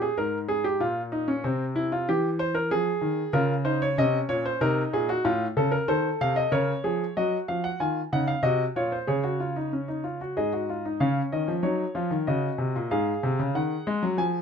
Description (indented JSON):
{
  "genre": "classical, baroque-style 3-part fugue for grand piano",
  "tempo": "94 BPM",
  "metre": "3/4",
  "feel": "straight",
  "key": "Bb minor",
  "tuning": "A4 = 440 Hz",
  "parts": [
    { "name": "warm grand piano", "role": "solo", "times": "0.0-14.4 s", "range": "Ab2 to Ab5", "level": "-24 LUFS", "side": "equal", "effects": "none" }
  ],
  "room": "moderate studio reverb, RT60 0.5 s",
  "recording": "minimal, uncompressed stereo recording",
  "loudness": "-24 LUFS",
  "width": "side -6 dB against mid",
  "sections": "0.0-7.2 A section; 7.2-11.0 B section; 11.0-14.4 C section",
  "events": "none",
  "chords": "0.0 N.C.; 0.8 Bbmadd11; 1.4 C7; 2.7 Fm; 3.3 Bbm/Db; 4.6 Cm7b5; 5.2 F7/A; 6.5 Bbm/Db; 7.2 Ebm; 9.1 Absus4/Db (rootless); 10.4 Ab5; 11.0 Db; 12.3 Ebm7/Db; 12.9 Ab7(no3)"
}